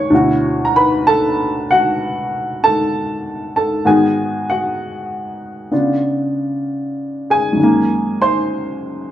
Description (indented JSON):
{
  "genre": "solo jazz",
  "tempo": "64 BPM",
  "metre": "4/4",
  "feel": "swing 68% on 8ths",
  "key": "unclear",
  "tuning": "A4 = 440 Hz",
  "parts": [
    { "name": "dark baby grand piano", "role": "solo", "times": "0.0-9.1 s", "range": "D2 to C#6", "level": "-15 LUFS", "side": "equal", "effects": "none" }
  ],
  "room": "wet stone room reverb, RT60 1.0 s",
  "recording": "band playing live in one room",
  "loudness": "-14 LUFS",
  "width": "side -12 dB against mid",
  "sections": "0.0-9.1 A section",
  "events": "none",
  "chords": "0.1 D69; 3.8 G#m7; 5.7 C#7b9; 7.6 F#69"
}